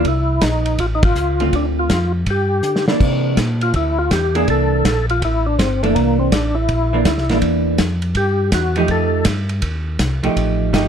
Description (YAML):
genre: soul jazz organ trio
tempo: 163 BPM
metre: 4/4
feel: swing 65% on 8ths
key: C mixolydian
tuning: A4 = 440 Hz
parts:
  - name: percussive tonewheel organ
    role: melody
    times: 0.0-9.2 s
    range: A3 to A4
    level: -19 LUFS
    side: equal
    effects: slow rotary speaker, overdrive, chorus vibrato
  - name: vintage hollow-body jazz guitar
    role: accompaniment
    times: 0.0-10.9 s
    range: D3 to G4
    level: -19 LUFS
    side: right 2 dB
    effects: none
  - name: mellow tonewheel organ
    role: bass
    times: 0.0-10.9 s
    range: G1 to D3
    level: -20 LUFS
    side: equal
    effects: overdrive, chorus vibrato, slow rotary speaker
  - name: warm soul drum kit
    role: drums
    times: 0.0-10.8 s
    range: crash cymbal, hi-hat, kick drum, ride cymbal, snare drum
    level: -20 LUFS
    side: equal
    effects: none
room: light reverb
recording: dark, warm production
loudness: -15 LUFS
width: side -8 dB against mid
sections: 0.0-3.0 A section; 3.0-10.9 B section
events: band accent 1.0; drum fill 2.6-3.0; tonewheel organ solo 3.0-10.9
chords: 0.0 C7; 0.8 Aaug; 1.5 Dm7; 2.3 G5; 3.0 C9; 8.9 F9